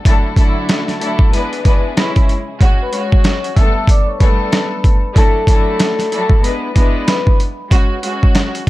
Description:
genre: hip hop, boom-bap hip-hop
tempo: 94 BPM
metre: 4/4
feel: swing 60% on 16ths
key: F# minor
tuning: A4 = 440 Hz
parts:
  - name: warm studio string section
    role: accompaniment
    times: 0.0-8.7 s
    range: F#3 to B4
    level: -19 LUFS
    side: left 1 dB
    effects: cassette tape, high-pass filter, low-pass filter
  - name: warm studio string section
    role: sustained chords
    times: 0.0-2.6 s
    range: C#2 to G#4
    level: -30 LUFS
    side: equal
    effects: high-pass filter, low-pass filter
  - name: boom bap sampler-style drum kit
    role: drums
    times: 0.1-8.7 s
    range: hi-hat, kick drum, snare drum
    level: -12 LUFS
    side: equal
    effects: none
  - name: vibraphone with soft mallets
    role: melody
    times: 2.8-7.4 s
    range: A4 to E6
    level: -21 LUFS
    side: left 2 dB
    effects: high-pass filter, low-pass filter, digital delay
room: small room ambience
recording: none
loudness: -12 LUFS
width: side -17 dB against mid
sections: 0.0-2.6 A section; 2.6-8.7 A section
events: none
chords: 0.1 Dadd9; 1.3 E7; 2.0 C#m; 2.6 F#sus2; 3.6 Gadd9; 5.2 Dadd9; 6.4 E7; 7.7 F#sus2

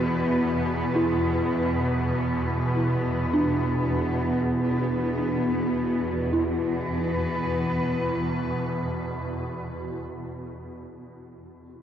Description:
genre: dark ambient drone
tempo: free time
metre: none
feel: none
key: unclear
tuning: A4 = 443 Hz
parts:
  - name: clear chamber cello section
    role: sustained chords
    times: 0.0-10.0 s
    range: E3 to B4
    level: -28 LUFS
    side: left 1 dB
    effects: none
  - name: swarming drone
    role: drone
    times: 0.0-9.6 s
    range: E2 to B2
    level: -27 LUFS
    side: equal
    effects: built-in reverb, phaser
  - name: dark detuned synth bell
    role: arpeggios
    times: 1.0-11.8 s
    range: D4 to E4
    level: -30 LUFS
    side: right 1 dB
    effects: chorus, diffuse ambient delay
room: wet cathedral reverb, RT60 5.2 s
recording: worn, warbling old tape, cassette tape, warbly pitch drift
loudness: -23 LUFS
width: side -9 dB against mid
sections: 0.0-6.3 A section; 6.3-11.1 B section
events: none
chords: 0.0 E5

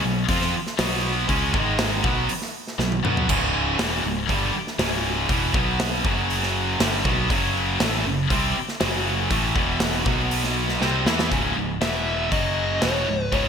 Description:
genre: hard rock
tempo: 120 BPM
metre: 4/4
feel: straight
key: unclear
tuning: A4 = 438 Hz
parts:
  - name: heavy high-gain guitar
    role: riff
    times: 0.0-13.5 s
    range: Db2 to F4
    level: -26 LUFS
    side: left 10 dB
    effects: distortion
  - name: high-gain distorted guitar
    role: riff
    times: 0.0-13.5 s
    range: Db2 to F4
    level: -26 LUFS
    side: right 10 dB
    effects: distortion
  - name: modern bright picked electric bass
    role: bass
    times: 0.0-13.5 s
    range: Db1 to F2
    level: -28 LUFS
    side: equal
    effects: none
  - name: big rock drum kit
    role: drums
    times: 0.3-13.4 s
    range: crash cymbal, hi-hat, kick drum, snare drum, toms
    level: -26 LUFS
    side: equal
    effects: gated reverb
  - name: dark smooth lead guitar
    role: melody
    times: 11.8-13.5 s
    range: Db5 to E5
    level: -26 LUFS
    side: left 2 dB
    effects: overdrive
room: moderate lush hall reverb, RT60 1.8 s, studio reverb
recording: bright 1980s-style digital production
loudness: -20 LUFS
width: side -7 dB against mid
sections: 0.0-11.3 A section; 11.3-13.5 B section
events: drum fill 2.8-3.3, 10.8-11.3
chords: 0.0 Cb5; 1.5 Ab5; 2.0 Cb5; 3.3 Db5; 5.5 Cb5; 6.0 Gb5; 6.8 Gmaj7; 7.3 Gb5; 9.6 E5; 10.1 Cb5; 10.8 Cmaj7; 11.3 Db5; 11.8 E5; 12.3 Gb5; 12.8 Db5

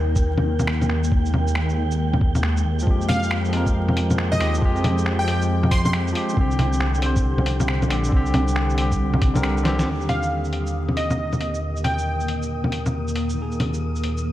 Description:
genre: future garage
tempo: 137 BPM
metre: 4/4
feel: swing 63% on 16ths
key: unclear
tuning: A4 = 443 Hz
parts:
  - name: ethereal airy pad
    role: sustained chords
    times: 0.0-14.3 s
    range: Bb2 to C5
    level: -29 LUFS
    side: left 1 dB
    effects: ensemble chorus, built-in reverb, phaser, sidechain pumping
  - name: dark detuned saw bass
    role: bass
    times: 0.0-14.3 s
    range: Bb1 to F2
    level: -23 LUFS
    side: equal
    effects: sidechain pumping
  - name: wind-like tuned noise texture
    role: texture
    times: 0.0-14.3 s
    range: G5 to Eb6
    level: -36 LUFS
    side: right 6 dB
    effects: built-in reverb
  - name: electronic kick drum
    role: drums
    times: 0.2-9.3 s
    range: none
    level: -21 LUFS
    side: equal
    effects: vintage 12-bit sampler grit
  - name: lo-fi sampler-style drum kit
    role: drums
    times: 0.2-14.2 s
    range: bongos, finger snaps, hi-hat, shaker, snare drum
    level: -25 LUFS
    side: equal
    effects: vintage 12-bit sampler grit
  - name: barky tine electric piano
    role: accompaniment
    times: 2.8-14.3 s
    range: D3 to C5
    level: -27 LUFS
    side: left 1 dB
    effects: vintage 12-bit sampler grit, sidechain pumping, analog delay
  - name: plucky unison lead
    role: melody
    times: 3.1-5.9, 10.1-12.3 s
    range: Eb5 to C6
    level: -28 LUFS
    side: equal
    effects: analog delay
room: light reverb, digital ambience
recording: vinyl crackle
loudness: -19 LUFS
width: side -14 dB against mid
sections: 0.0-9.9 A section; 9.9-14.3 B section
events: drum fill 9.7; band accent 9.8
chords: 0.0 Absus2/Eb; 2.9 Fmadd9; 6.4 Csus2; 9.9 Ebmaj7; 13.4 Absus2/Eb

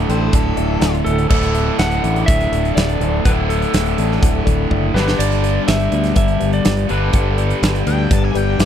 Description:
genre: classic rock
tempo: 124 BPM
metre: 4/4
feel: straight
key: unclear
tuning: A4 = 441 Hz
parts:
  - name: clean lap steel guitar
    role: melody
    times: 0.0-8.1 s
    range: A4 to F#5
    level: -23 LUFS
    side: right 1 dB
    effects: slapback echo
  - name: mellow reed electric piano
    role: accompaniment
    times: 0.0-8.7 s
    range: G4 to G5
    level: -27 LUFS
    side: left 17 dB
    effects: fast tremolo
  - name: tonewheel organ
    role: sustained chords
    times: 0.0-8.7 s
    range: B3 to E5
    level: -33 LUFS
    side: right 2 dB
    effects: none
  - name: distorted electric guitar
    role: riff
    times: 0.0-8.7 s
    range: D2 to G3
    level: -23 LUFS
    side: left 16 dB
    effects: overdrive
  - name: overdriven electric guitar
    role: riff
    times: 0.0-8.7 s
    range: D2 to G3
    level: -23 LUFS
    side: right 16 dB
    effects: none
  - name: growling fingered electric bass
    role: bass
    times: 0.0-8.7 s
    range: D1 to D2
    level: -19 LUFS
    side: equal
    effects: overdrive
  - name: octave-fuzz lead guitar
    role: second line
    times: 0.1-0.9, 7.9-8.7 s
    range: A4 to A5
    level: -27 LUFS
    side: left 5 dB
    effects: distortion
  - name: huge arena drum kit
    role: drums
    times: 0.1-8.7 s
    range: crash cymbal, hi-hat, kick drum, snare drum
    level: -19 LUFS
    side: equal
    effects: none
room: little or no reverb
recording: dry, close 1970s-style studio recording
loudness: -14 LUFS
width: side -9 dB against mid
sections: 0.0-8.7 A section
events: drum fill 4.7-5.2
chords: 0.0 Dsus2; 5.0 G

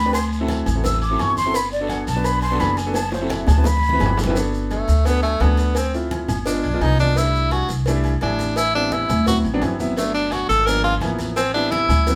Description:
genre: Afro-Cuban jazz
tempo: 171 BPM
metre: 4/4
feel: straight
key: G major from 4.4 s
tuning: A4 = 441 Hz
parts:
  - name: breathy jazz flute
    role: second line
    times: 0.0-4.2 s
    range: C5 to E6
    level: -25 LUFS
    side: equal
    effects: none
  - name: upright bass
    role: bass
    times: 0.0-12.2 s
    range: F#1 to D2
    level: -24 LUFS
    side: equal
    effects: none
  - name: warm baby grand piano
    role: accompaniment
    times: 0.1-12.2 s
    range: E#3 to B4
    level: -28 LUFS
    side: equal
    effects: none
  - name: agogo bells and timbales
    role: percussion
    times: 0.1-12.1 s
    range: none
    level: -34 LUFS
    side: equal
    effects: none
  - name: congas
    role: percussion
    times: 0.1-12.2 s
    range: none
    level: -33 LUFS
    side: equal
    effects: none
  - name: cowbell and bongos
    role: percussion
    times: 0.1-12.2 s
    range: none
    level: -33 LUFS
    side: equal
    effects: none
  - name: guiro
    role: percussion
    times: 0.1-4.4, 10.0-12.2 s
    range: none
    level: -41 LUFS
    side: equal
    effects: none
  - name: maracas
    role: percussion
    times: 0.1-12.2 s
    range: none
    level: -38 LUFS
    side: equal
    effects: none
  - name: edgy tenor saxophone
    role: melody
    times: 4.7-12.2 s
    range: A3 to Bb4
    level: -23 LUFS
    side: equal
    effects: none
room: moderate studio reverb, RT60 0.9 s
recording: band playing live in one room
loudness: -20 LUFS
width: mono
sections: 0.0-4.4 A section; 4.4-12.2 A section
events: flute solo 0.0-4.4; drum fill 3.0-4.4; tenor saxophone solo 4.4-12.2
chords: 0.1 D9; 1.5 Gmaj9; 3.0 F#m7b5; 3.7 D13; 4.4 Gmaj9; 5.8 Dm7; 6.5 G7b9; 7.2 C6; 8.6 Am9; 9.3 D13; 10.0 Gmaj9; 10.7 G#dim7; 11.4 Am7

